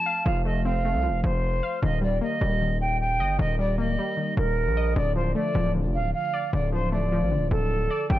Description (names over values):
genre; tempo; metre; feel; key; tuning
hip hop, trap; 153 BPM; 4/4; half-time; D phrygian; A4 = 436 Hz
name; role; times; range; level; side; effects
silver concert flute; melody; 0.0-8.2 s; A4 to A5; -27 LUFS; right 2 dB; low-pass filter, tape echo
warbly dusty pluck; accompaniment; 0.0-8.2 s; G2 to F5; -29 LUFS; left 2 dB; chorus, low-pass filter
distorted 808-style bass; bass; 0.3-8.2 s; D1 to C2; -25 LUFS; equal; distortion
room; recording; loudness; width
small room ambience; dark, warm production; -23 LUFS; side -14 dB against mid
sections
0.0-5.0 A section; 5.0-8.2 B section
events
none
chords
0.0 F; 1.8 Eb; 5.0 Dm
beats
| 0.26 0.65 1.04 1.43 | 1.82 2.22 2.61 3.00 | 3.39 3.79 4.18 4.57 | 4.96 5.35 5.75 6.14 | 6.53 6.92 7.31 7.71 | 8.10